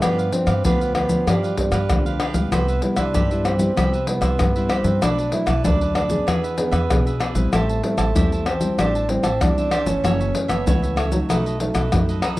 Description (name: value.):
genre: samba and choro.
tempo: 96 BPM.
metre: 4/4.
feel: straight.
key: unclear.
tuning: A4 = 440 Hz.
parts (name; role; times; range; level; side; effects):
mellow bassoon; melody; 0.0-12.2 s; F#3 to E4; -24 LUFS; right 2 dB; none.
cavaquinho; accompaniment; 0.0-12.4 s; D4 to A5; -32 LUFS; right 6 dB; none.
nylon-string guitar; accompaniment; 0.0-12.4 s; F#2 to G#4; -25 LUFS; left 1 dB; none.
upright bass; bass; 0.0-12.4 s; F#1 to G2; -24 LUFS; right 1 dB; none.
maracas, surdo, pandeiro and tamborim; percussion; 0.0-12.4 s; none; -22 LUFS; left 2 dB; none.
room: small room ambience.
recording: dry, close 1970s-style studio recording.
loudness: -18 LUFS.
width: side -17 dB against mid.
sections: 0.0-12.4 A section.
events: none.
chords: 0.0 G7; 2.5 Cmaj7; 5.0 Bm7; 6.3 E7; 7.5 Am7; 10.0 F#m7; 11.3 B7.